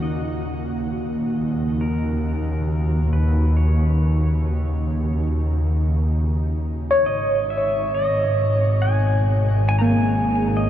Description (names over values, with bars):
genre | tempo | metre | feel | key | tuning
ambient | 68 BPM | 4/4 | straight | unclear | A4 = 440 Hz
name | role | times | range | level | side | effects
pedal steel guitar | melody | 0.0-10.7 s | A#4 to A#5 | -30 LUFS | left 1 dB | shimmer reverb, ping-pong delay
shimmering ambient pad | sustained chords | 0.0-10.7 s | A#2 to G#4 | -30 LUFS | equal | chorus, built-in reverb, shimmer reverb
overdriven tine electric piano | arpeggios | 0.0-10.7 s | A#3 to C#5 | -23 LUFS | equal | phaser, shimmer reverb, ping-pong delay
warm symphonic double bass section | bass | 0.0-10.7 s | G#1 to D#2 | -20 LUFS | equal | none
room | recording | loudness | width
moderate huge ambient reverb, RT60 7.8 s | cassette tape | -18 LUFS | side -11 dB against mid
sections
0.0-10.7 A section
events
fade-in on ambient pad 0.0-10.7; fade-in on pedal steel guitar 0.0-10.7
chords
0.0 D#m7; 7.1 G#m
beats
| 0.01 0.90 1.78 2.66 | 3.54 4.42 5.31 6.19 | 7.07 7.95 8.84 9.72 | 10.60